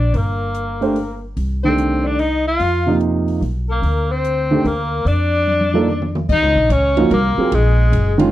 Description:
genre	modal jazz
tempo	146 BPM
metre	3/4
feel	swing 66% on 8ths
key	unclear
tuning	A4 = 440 Hz
part	clear tenor saxophone	melody	0.0-8.2 s	Ab3 to F4	-20 LUFS	equal	none
part	bright alto saxophone	second line	0.0-8.2 s	Ab4 to F5	-24 LUFS	left 8 dB	none
part	upright bass	bass	0.0-8.3 s	Gb1 to F2	-19 LUFS	equal	none
part	open jazz drum kit	drums	0.1-8.3 s	crash cymbal, hi-hat, kick drum, ride cymbal, toms	-26 LUFS	equal	none
part	warm grand piano	accompaniment	0.8-8.3 s	C3 to C5	-17 LUFS	right 3 dB	none
room	small room ambience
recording	dry, close 1970s-style studio recording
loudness	-15 LUFS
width	side -14 dB against mid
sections	0.0-6.3 A section; 6.3-8.3 B section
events	drum fill 5.5-6.3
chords	0.0 C7sus2 (rootless); 1.4 Bb; 6.3 Ebm9

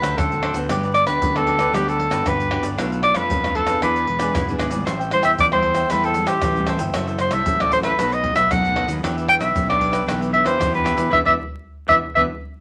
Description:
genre	samba and choro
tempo	115 BPM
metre	4/4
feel	straight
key	E minor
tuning	A4 = 440 Hz
part	mellow soprano saxophone	melody	0.0-12.2 s	G4 to G5	-21 LUFS	equal	none
part	cavaquinho	accompaniment	0.0-12.2 s	D4 to G5	-30 LUFS	equal	none
part	nylon-string guitar	accompaniment	0.0-12.2 s	F#2 to A4	-31 LUFS	equal	none
part	fuzz fingered electric bass	bass	0.0-12.3 s	E1 to F2	-29 LUFS	equal	overdrive
part	tube shaker, pandeiro, tamborim and surdo	percussion	0.0-12.3 s	none	-29 LUFS	equal	none
room	moderate studio reverb, RT60 0.6 s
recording	vinyl crackle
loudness	-20 LUFS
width	mono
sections	0.0-12.6 A section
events	band accent 11.1-12.6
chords	0.0 D7; 0.7 Gmaj7; 2.8 Bm7b5; 3.8 E7; 4.9 Am7; 7.0 F#m7b5; 8.0 B7; 9.0 Em7

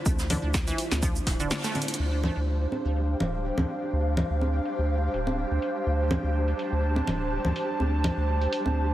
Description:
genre	minimal techno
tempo	124 BPM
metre	4/4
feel	swing 54% on 16ths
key	D minor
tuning	A4 = 439 Hz
part	airy breathy pad	texture	0.0-8.9 s	D4 to A5	-30 LUFS	right 1 dB	chorus, sidechain pumping
part	flickering grainy texture	texture	0.0-8.9 s	G3 to G4	-39 LUFS	left 1 dB	built-in reverb, sidechain pumping
part	saturated sub bass	bass	0.1-8.9 s	D1 to D2	-27 LUFS	equal	sidechain pumping
part	electronic kick drum	drums	0.1-1.4 s	none	-28 LUFS	equal	none
part	punchy analog drum machine	drums	0.1-8.6 s	cabasa, hi-hat, snare drum	-33 LUFS	equal	low-pass filter on perc, low-pass filter on hats, low-pass filter on snare, low-pass filter on room
part	soft brush drum kit	drums	0.1-2.0 s	hi-hat, snare drum	-41 LUFS	right 2 dB	sidechain pumping on hats, high-pass filter on hats, high-pass filter on snare, high-pass filter on room
part	congas	percussion	0.1-8.7 s	none	-31 LUFS	equal	none
part	resonant blip pluck	riff	0.3-1.8 s	D3 to A3	-34 LUFS	equal	chorus, sidechain pumping, digital delay
room	moderate lush hall reverb, RT60 2.3 s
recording	heavily compressed radio sound, multiband compression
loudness	-24 LUFS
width	side -14 dB against mid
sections	0.0-2.0 A section; 2.0-8.9 B section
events	band accent 1.5; drum fill 1.8; filter sweep on drum 2.0-8.9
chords	0.0 Dm7

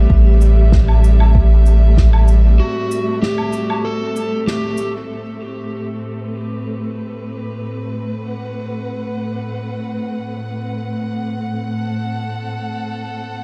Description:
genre	ambient dub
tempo	96 BPM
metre	4/4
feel	swing 53% on 16ths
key	A dorian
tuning	A4 = 443 Hz
part	rich chamber string section	sustained chords	0.0-13.4 s	A2 to F#5	-25 LUFS	equal	vintage 12-bit sampler grit
part	warm sub bass	bass	0.0-2.6 s	A1	-12 LUFS	equal	tube saturation
part	electronic kick drum	drums	0.1-2.1 s	none	-17 LUFS	equal	overdrive
part	cabasa, snare drum and woodblock	drums	0.4-4.9 s	none	-28 LUFS	equal	low-pass filter on snare, low-pass filter on perc, low-pass filter on room, dub echo
part	overdriven slide guitar	melody	2.6-4.9 s	F#4 to A4	-29 LUFS	equal	dub echo
room	small room ambience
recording	dark, warm production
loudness	-17 LUFS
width	mono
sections	0.0-5.1 A section; 5.1-13.4 B section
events	break 2.6-5.1; band accent 4.5-4.8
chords	0.0 C; 5.1 Am69

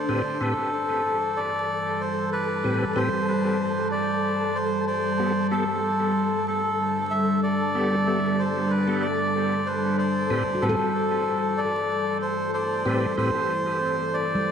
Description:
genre	ambient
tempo	94 BPM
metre	4/4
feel	straight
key	A minor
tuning	A4 = 438 Hz
part	melodica	melody	0.0-14.5 s	A4 to E5	-26 LUFS	equal	tape echo
part	deep dark ambient pad	sustained chords	0.0-14.5 s	G3 to D5	-27 LUFS	equal	chorus, built-in reverb
part	wind-like tuned noise texture	texture	0.3-14.5 s	A4 to A5	-32 LUFS	left 3 dB	built-in reverb
part	bright tonewheel organ	stabs	0.1-13.3 s	A2 to B4	-30 LUFS	left 1 dB	overdrive, chorus vibrato, slow rotary speaker, dub echo
part	handpan	arpeggios	10.5-14.5 s	G3 to A4	-31 LUFS	left 3 dB	tape echo
room	wet scoring stage reverb, RT60 1.5 s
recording	vinyl crackle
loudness	-22 LUFS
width	side -7 dB against mid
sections	0.0-14.5 A section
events	filter sweep on ambient pad 0.0-14.5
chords	0.0 Am7; 4.6 Gadd9; 9.7 Am7

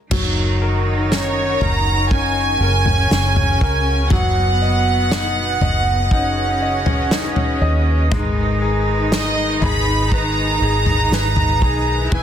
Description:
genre	pop ballad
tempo	60 BPM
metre	4/4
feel	straight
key	F# major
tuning	A4 = 439 Hz
part	rich chamber cello section	second line	0.1-12.2 s	B2 to E4	-25 LUFS	right 2 dB	none
part	bright upright piano	accompaniment	0.1-12.2 s	E3 to D#5	-26 LUFS	left 6 dB	none
part	large flute ensemble	sustained chords	0.1-12.2 s	A#4 to E6	-28 LUFS	left 1 dB	none
part	vintage muted fingered electric bass	bass	0.1-12.2 s	E1 to D#2	-20 LUFS	equal	none
part	unplugged drum kit	drums	0.1-12.2 s	crash cymbal, kick drum, snare drum, toms	-20 LUFS	equal	none
part	warm studio violin section	melody	1.1-12.2 s	C#5 to B5	-20 LUFS	right 2 dB	digital delay
room	small room ambience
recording	dense, heavily limited modern master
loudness	-15 LUFS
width	side -9 dB against mid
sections	0.1-12.2 A section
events	none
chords	0.1 F#; 4.1 B/F#; 8.1 G#m

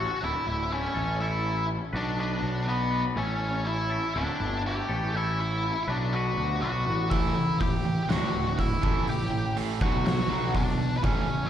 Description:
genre	quiet-loud alternative rock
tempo	122 BPM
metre	4/4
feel	straight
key	unclear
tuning	A4 = 440 Hz
part	octave-fuzz lead guitar	melody	0.0-11.5 s	B3 to G5	-30 LUFS	left 1 dB	distortion, plate reverb, slapback echo, digital delay
part	twangy electric guitar	arpeggios	0.0-7.1 s	D2 to B4	-34 LUFS	left 2 dB	plate reverb, slapback echo
part	fuzz picked electric bass	bass	0.0-11.5 s	D1 to D2	-30 LUFS	equal	overdrive
part	crunchy overdriven guitar	riff	7.1-11.5 s	D2 to B3	-31 LUFS	right 7 dB	slapback echo
part	oversized low-tuned drum kit	drums	7.1-11.2 s	hi-hat, kick drum, snare drum	-29 LUFS	equal	none
room	light reverb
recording	live gig heard through the venue's PA, recital hall reverb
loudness	-25 LUFS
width	side -10 dB against mid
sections	0.0-11.5 A section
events	half time 0.0-11.5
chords	0.2 Dsus2; 1.0 A; 1.9 Bm; 3.2 A; 4.2 Dsus2; 4.9 A7; 5.9 Bm; 7.1 A5; 8.1 Dsus2; 8.8 A5; 9.8 Bm

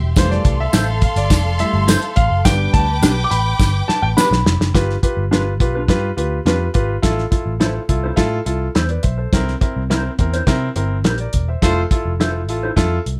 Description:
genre	uptempo 1960s-style soul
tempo	105 BPM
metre	4/4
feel	straight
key	G mixolydian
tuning	A4 = 438 Hz
part	warm studio string section	second line	0.0-4.7 s	G4 to D6	-27 LUFS	equal	slapback echo
part	vintage muted picked electric bass	bass	0.0-13.2 s	E1 to C3	-22 LUFS	equal	none
part	warm baby grand piano	accompaniment	0.2-13.0 s	E3 to D6	-24 LUFS	equal	none
part	cloth-damped thuddy drum kit	drums	0.2-13.2 s	hi-hat, kick drum, snare drum	-19 LUFS	equal	none
part	tambourine	percussion	0.2-4.3 s	none	-31 LUFS	equal	none
part	mellow electric guitar	stabs	0.7-12.7 s	D4 to C5	-24 LUFS	equal	analog chorus
part	warm horn section	second line	11.6-11.8 s	A3 to C5	-25 LUFS	equal	none
room	light reverb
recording	none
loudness	-17 LUFS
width	mono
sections	0.0-4.7 A section; 4.7-13.2 B section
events	grand piano solo 0.0-4.7; drum fill 3.6-4.7; band accent 11.6-13.2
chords	0.2 Fmaj7; 2.5 G; 4.7 G7; 7.0 Fmaj7/A; 9.3 C7; 11.6 Fmaj7

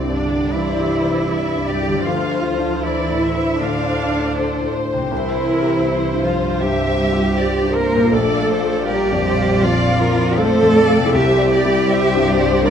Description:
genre	cinematic, emotional film score for orchestra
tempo	79 BPM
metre	4/4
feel	rubato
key	C mixolydian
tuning	A4 = 441 Hz
part	dark symphonic violin section	melody	0.0-12.7 s	C5 to D5	-28 LUFS	left 3 dB	none
part	rich cello	melody	0.0-12.7 s	C4 to Bb4	-23 LUFS	right 2 dB	none
part	clear grand piano	accompaniment	0.0-12.7 s	Bb1 to F5	-22 LUFS	left 2 dB	none
part	warm symphonic viola section	accompaniment	0.0-12.7 s	C4 to Bb4	-22 LUFS	right 1 dB	none
part	concert harp	arpeggios	0.0-12.7 s	Bb2 to F5	-29 LUFS	left 9 dB	none
part	dark symphonic double bass section	bass	0.0-12.7 s	Bb1 to D2	-26 LUFS	right 3 dB	none
part	warm symphonic cello section	bass	0.0-12.7 s	C3 to Bb3	-24 LUFS	right 2 dB	none
part	dark symphonic violin section	second line	0.5-12.7 s	A4 to F5	-24 LUFS	left 3 dB	none
room	moderate scoring stage reverb, RT60 1.9 s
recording	none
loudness	-15 LUFS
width	side -8 dB against mid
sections	0.0-12.7 A section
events	none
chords	0.0 Cadd9; 2.1 Dm7; 5.1 Fsus2/C; 8.1 Bb; 11.2 Cadd9

